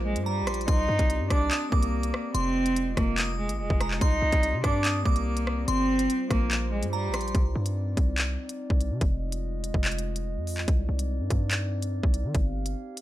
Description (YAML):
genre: hip hop, drill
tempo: 144 BPM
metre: 4/4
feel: half-time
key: C minor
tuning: A4 = 438 Hz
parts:
  - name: rich cello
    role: melody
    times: 0.0-7.3 s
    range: G3 to Eb4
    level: -28 LUFS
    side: equal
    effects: low-pass filter, ping-pong delay
  - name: glass harmonica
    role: sustained chords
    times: 0.0-13.0 s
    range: G3 to F5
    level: -36 LUFS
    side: equal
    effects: none
  - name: hard-hitting 808-style bass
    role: bass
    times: 0.0-12.7 s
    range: F1 to Eb3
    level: -29 LUFS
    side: equal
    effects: none
  - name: drill drum kit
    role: drums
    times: 0.2-13.0 s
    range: handclaps, hi-hat, kick drum, rim click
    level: -27 LUFS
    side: equal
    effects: none
  - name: glassy synth bell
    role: second line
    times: 0.3-7.3 s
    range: Bb5 to Eb6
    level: -35 LUFS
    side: right 1 dB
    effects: chorus, phaser, ping-pong delay
room: digital ambience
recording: none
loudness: -24 LUFS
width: side -14 dB against mid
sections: 0.0-7.3 A section; 7.3-13.0 B section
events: none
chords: 0.0 G7sus4; 0.7 Cmadd9; 2.3 Fm7; 4.0 Cmadd9; 5.7 G7sus4; 7.3 Cmadd9; 9.0 Fm7; 10.7 Cmadd9; 12.3 G7sus4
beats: 0.26 | 0.68 1.10 1.51 1.93 | 2.35 2.76 3.18 3.60 | 4.01 4.43 4.85 5.26 | 5.68 6.10 6.51 6.93 | 7.35 7.76 8.18 8.60 | 9.01 9.43 9.85 10.26 | 10.68 11.10 11.51 11.93 | 12.35 12.76